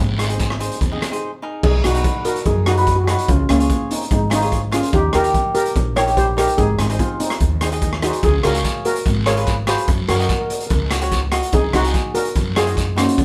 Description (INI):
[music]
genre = calypso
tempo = 145 BPM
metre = 4/4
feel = straight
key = Db major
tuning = A4 = 440 Hz
[part]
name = steel pan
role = melody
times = 0.0-13.2 s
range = Ab3 to Db5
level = -23 LUFS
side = equal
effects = none
[part]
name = upright bass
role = bass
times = 0.0-13.2 s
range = Ab1 to Gb2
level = -23 LUFS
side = equal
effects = none
[part]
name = cavaquinho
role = accompaniment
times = 0.2-13.2 s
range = Eb4 to F5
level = -26 LUFS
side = equal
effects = none
[part]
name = raw garage drum kit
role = drums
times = 0.2-13.2 s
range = crash cymbal, hi-hat, kick drum, rim click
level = -24 LUFS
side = equal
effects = none
[part]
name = guiro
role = percussion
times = 0.4-1.1, 8.2-13.2 s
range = none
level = -32 LUFS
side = equal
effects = none
[sound]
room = moderate studio reverb, RT60 0.6 s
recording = band playing live in one room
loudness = -18 LUFS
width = mono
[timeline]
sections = 0.0-1.6 A section; 1.6-13.2 B section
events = break 1.2-1.6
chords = 0.0 Ab; 1.6 Cb; 3.3 Dbadd9; 4.9 Eb; 6.6 Ab; 8.2 Db7; 9.9 Gb; 11.5 Cm7b5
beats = 0.40 0.81 1.22 | 1.63 2.05 2.46 2.87 | 3.28 3.69 4.11 4.52 | 4.93 5.34 5.75 6.17 | 6.58 6.99 7.40 7.82 | 8.23 8.64 9.05 9.47 | 9.88 10.29 10.71 11.12 | 11.53 11.94 12.36 12.77 | 13.18